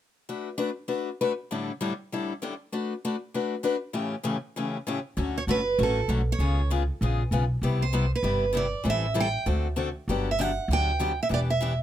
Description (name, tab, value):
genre	acoustic string swing (jazz manouche)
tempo	196 BPM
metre	4/4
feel	swing 60% on 8ths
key	D major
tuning	A4 = 440 Hz
part	picked steel-string acoustic guitar	accompaniment	0.3-11.7 s	A2 to B4	-28 LUFS	left 4 dB	none
part	upright bass	bass	5.2-11.8 s	E1 to D2	-27 LUFS	equal	none
part	picked steel-string acoustic guitar	melody	5.4-11.8 s	A4 to G5	-27 LUFS	right 4 dB	none
room	light reverb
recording	close, detailed microphones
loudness	-25 LUFS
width	side -11 dB against mid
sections	0.3-5.2 A section; 5.2-11.8 B section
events	none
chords	0.3 D6/A; 1.5 A7sus4; 2.7 D6/A; 4.0 A7; 5.2 Dmaj7; 6.4 C#7; 7.6 Cmaj7; 8.9 Am7; 9.5 D7; 10.1 Gmaj7; 11.3 Em7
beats	| 0.28 0.59 0.89 1.20 | 1.50 1.81 2.12 2.42 | 2.73 3.04 3.34 3.65 | 3.95 4.26 4.57 4.87 | 5.18 5.48 5.79 6.10 | 6.40 6.71 7.02 7.32 | 7.63 7.94 8.24 8.55 | 8.86 9.16 9.47 9.78 | 10.08 10.39 10.70 11.00 | 11.31 11.62